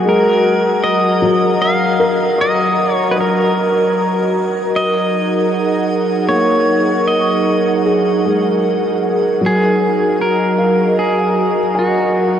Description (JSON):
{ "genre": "ambient", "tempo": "77 BPM", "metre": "3/4", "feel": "straight", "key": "unclear", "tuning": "A4 = 441 Hz", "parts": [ { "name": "airy breathy pad", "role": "sustained chords", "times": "0.0-12.4 s", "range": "F#3 to A#5", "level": "-16 LUFS", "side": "right 1 dB", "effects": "chorus, shimmer reverb" }, { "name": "felt-muted upright piano", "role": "arpeggios", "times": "0.0-12.4 s", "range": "F#3 to D#6", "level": "-20 LUFS", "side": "left 2 dB", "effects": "shimmer reverb, tape echo" }, { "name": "drifting glass-harmonics texture", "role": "texture", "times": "0.0-12.4 s", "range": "F#4 to G#6", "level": "-26 LUFS", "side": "left 5 dB", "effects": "chorus, built-in reverb, shimmer reverb" }, { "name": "pedal steel guitar", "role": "melody", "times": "0.1-12.4 s", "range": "F#4 to E#5", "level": "-17 LUFS", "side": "equal", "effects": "shimmer reverb" } ], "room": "wet huge ambient reverb, RT60 8.6 s", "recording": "worn, warbling old tape, cassette tape, warbly pitch drift", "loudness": "-12 LUFS", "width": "side -9 dB against mid", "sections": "0.0-12.4 A section", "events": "fade-out on synth texture 0.0-12.4", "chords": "0.1 D#m/F#; 4.7 F#69; 9.4 D#m/F#", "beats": "| 0.05 0.83 1.61 | 2.39 3.17 3.95 | 4.73 5.51 6.29 | 7.07 7.85 8.62 | 9.40 10.18 10.96 | 11.74" }